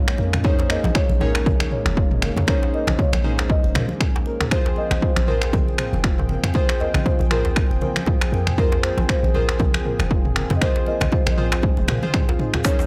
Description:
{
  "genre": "afro house",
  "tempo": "118 BPM",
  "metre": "4/4",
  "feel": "swing 57% on 16ths",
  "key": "unclear",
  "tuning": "A4 = 440 Hz",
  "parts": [
    { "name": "marimba with medium mallets", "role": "melody", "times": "0.0-12.9 s", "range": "Bb4 to Eb5", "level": "-30 LUFS", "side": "equal", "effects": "tape echo" },
    { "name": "warm analog pad", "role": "sustained chords", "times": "0.0-12.9 s", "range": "F3 to G5", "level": "-34 LUFS", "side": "equal", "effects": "chorus, sidechain pumping" },
    { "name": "nylon-string guitar", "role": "arpeggios", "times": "0.0-12.8 s", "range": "Bb3 to Bb4", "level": "-36 LUFS", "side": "equal", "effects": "none" },
    { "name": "warm analog keys", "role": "stabs", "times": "0.0-12.9 s", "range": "Db4 to Db5", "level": "-33 LUFS", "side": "equal", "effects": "chorus, sidechain pumping, tape echo" },
    { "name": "house drum kit", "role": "drums", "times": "0.1-12.8 s", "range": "finger snaps, toms", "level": "-28 LUFS", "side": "equal", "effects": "overdrive" },
    { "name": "djembe", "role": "percussion", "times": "0.1-12.9 s", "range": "none", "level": "-33 LUFS", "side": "equal", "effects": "none" },
    { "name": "warm 808-style bass", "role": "bass", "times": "0.2-12.0 s", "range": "F1 to Bb2", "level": "-26 LUFS", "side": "equal", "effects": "sidechain pumping" },
    { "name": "congas", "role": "percussion", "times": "0.2-12.8 s", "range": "none", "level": "-33 LUFS", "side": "equal", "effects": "none" },
    { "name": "electronic kick drum", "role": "drums", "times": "0.4-12.8 s", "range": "none", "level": "-23 LUFS", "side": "equal", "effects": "overdrive" },
    { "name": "egg shaker", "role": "percussion", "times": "12.6-12.9 s", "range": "none", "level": "-37 LUFS", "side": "equal", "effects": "none" }
  ],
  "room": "small room ambience",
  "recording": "dry, gritty hardware recording",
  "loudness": "-20 LUFS",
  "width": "mono",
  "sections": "0.0-12.9 A section",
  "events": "drum fill 11.6-12.6",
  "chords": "0.0 Bbm11; 4.5 Fm",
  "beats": "| 0.45 0.95 1.46 1.97 | 2.48 2.99 3.50 4.00 | 4.51 5.02 5.53 6.04 | 6.55 7.05 7.56 8.07 | 8.58 9.09 9.60 10.11 | 10.62 11.12 11.63 12.14 | 12.65"
}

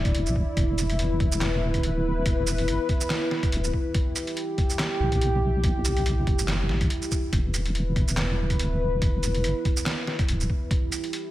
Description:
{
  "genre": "deep dubstep",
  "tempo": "142 BPM",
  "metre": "4/4",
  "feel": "swing 55% on 16ths, half-time",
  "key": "E minor",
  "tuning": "A4 = 439 Hz",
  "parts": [
    { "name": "dark analog pad", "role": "sustained chords", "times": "0.0-11.3 s", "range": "E4 to D5", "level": "-29 LUFS", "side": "left 1 dB", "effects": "chorus" },
    { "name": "deep soft wobble bass", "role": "bass", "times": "0.0-10.5 s", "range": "D1 to B1", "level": "-26 LUFS", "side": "equal", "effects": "chorus, tube saturation" },
    { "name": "electronic kick drum", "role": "drums", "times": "0.1-10.8 s", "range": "none", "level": "-26 LUFS", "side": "equal", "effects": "overdrive" },
    { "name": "trip hop sampler-style drum kit", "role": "drums", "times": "0.1-11.2 s", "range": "handclaps, hi-hat, shaker, snare drum", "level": "-31 LUFS", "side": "right 1 dB", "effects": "overdrive" }
  ],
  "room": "light reverb, digital ambience",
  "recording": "none",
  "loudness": "-23 LUFS",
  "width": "side -15 dB against mid",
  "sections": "0.0-11.3 A section",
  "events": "none",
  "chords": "0.0 Em",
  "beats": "0.14 | 0.57 0.99 1.41 1.83 | 2.26 2.68 3.10 3.52 | 3.95 4.37 4.79 5.21 | 5.64 6.06 6.48 6.91 | 7.33 7.75 8.17 8.60 | 9.02 9.44 9.86 10.29 | 10.71 11.13"
}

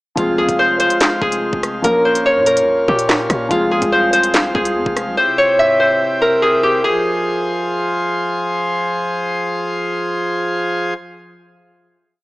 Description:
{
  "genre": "hip hop, drill",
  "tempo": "144 BPM",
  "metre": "4/4",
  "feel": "half-time",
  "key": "F harmonic minor",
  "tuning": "A4 = 440 Hz",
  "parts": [
    { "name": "concert harp", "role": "melody", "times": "0.2-9.1 s", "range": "F4 to E5", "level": "-14 LUFS", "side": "equal", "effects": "tape echo" },
    { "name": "felt-muted upright piano", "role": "accompaniment", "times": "0.2-5.2 s", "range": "F3 to Bb4", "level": "-22 LUFS", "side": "left 1 dB", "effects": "none" },
    { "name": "pipe organ, principal chorus", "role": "sustained chords", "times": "0.2-10.9 s", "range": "C3 to C5", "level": "-21 LUFS", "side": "equal", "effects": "none" },
    { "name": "hard-hitting 808-style bass", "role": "bass", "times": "0.2-5.2 s", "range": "F1 to Bb2", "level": "-26 LUFS", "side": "equal", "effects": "none" },
    { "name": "drill drum kit", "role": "drums", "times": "0.2-5.1 s", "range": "handclaps, hi-hat, kick drum, rim click, snare drum", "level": "-18 LUFS", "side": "equal", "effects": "none" }
  ],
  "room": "light reverb, small room reverb",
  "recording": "small speaker sound",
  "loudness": "-14 LUFS",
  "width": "side -20 dB against mid",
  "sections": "0.2-6.8 hook; 6.8-10.2 final chord",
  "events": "none",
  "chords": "0.2 Fm; 1.8 Bbm; 3.5 Fm; 5.2 C; 6.8 Fm",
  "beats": "| 0.17 0.59 1.01 1.43 | 1.84 2.26 2.67 3.09 | 3.51 3.92 4.34 4.76 | 5.17 5.59 6.01 6.42 | 6.84 7.26 7.67 8.09 | 8.51 8.93 9.34 9.76"
}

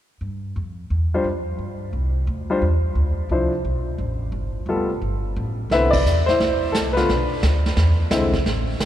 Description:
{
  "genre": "jazz piano trio",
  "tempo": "175 BPM",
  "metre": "4/4",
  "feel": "swing 65% on 8ths",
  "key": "unclear",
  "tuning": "A4 = 440 Hz",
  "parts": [
    { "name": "upright bass", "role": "bass", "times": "0.2-8.9 s", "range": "F1 to G2", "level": "-22 LUFS", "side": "equal", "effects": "none" },
    { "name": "warm upright piano", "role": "melody", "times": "1.1-8.3 s", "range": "D3 to E5", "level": "-22 LUFS", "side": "left 2 dB", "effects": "none" },
    { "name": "vintage brush drum kit", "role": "drums", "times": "5.7-8.9 s", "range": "brushed snare drum, hi-hat, kick drum, ride cymbal, snare drum", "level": "-25 LUFS", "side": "right 2 dB", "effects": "none" }
  ],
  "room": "wet cathedral reverb, RT60 6.0 s",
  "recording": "recorded in a church or concert hall",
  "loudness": "-19 LUFS",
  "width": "side -12 dB against mid",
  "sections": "0.2-5.7 A section; 5.7-8.9 B section",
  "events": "band accent 5.9",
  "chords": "0.2 G7sus4; 3.0 D7(no3); 4.3 G7sus2; 5.7 Cmaj9; 7.1 Bm; 7.8 E7b13",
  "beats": "| 0.22 0.56 0.91 1.25 | 1.60 1.94 2.28 2.63 | 2.97 3.31 3.66 4.00 | 4.34 4.69 5.03 5.38 | 5.72 6.06 6.41 6.75 | 7.09 7.44 7.78 8.12 | 8.46 8.81"
}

